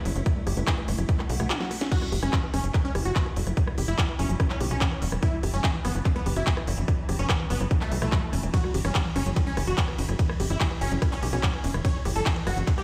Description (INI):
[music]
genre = psychedelic trance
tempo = 145 BPM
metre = 4/4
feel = straight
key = F# phrygian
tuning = A4 = 438 Hz
[part]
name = swarming drone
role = sustained chords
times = 0.0-12.8 s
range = E3 to E4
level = -40 LUFS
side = equal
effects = built-in reverb, sidechain pumping
[part]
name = formant-sweep wobble bass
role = second line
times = 0.1-11.1 s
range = F#3 to C#4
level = -47 LUFS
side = equal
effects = none
[part]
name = woody wave-folded pluck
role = riff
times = 0.1-12.8 s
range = E3 to G4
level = -38 LUFS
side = equal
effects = chorus, sidechain pumping, tape echo
[part]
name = tight sequencer bass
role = bass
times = 0.1-12.6 s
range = E1 to B1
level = -29 LUFS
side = equal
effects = none
[part]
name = techno drum kit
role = drums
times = 0.1-12.8 s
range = crash cymbal, handclaps, hi-hat, ride cymbal, rim click, snare drum, toms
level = -34 LUFS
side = equal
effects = none
[part]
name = electronic kick drum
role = drums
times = 0.3-12.8 s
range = none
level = -27 LUFS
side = equal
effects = none
[part]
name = swell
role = sound effects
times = 1.3-1.9 s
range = none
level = -42 LUFS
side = equal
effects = none
[part]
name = supersaw stab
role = melody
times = 1.9-12.8 s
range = A3 to C#5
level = -35 LUFS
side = equal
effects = phaser, sidechain pumping, digital delay
[sound]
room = light reverb, digital ambience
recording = played on a big sound system in a bare room, stone room reverb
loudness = -26 LUFS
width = mono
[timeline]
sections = 0.0-12.8 A section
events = swell 1.3-1.9; drum fill 1.5-1.9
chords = 0.0 F#5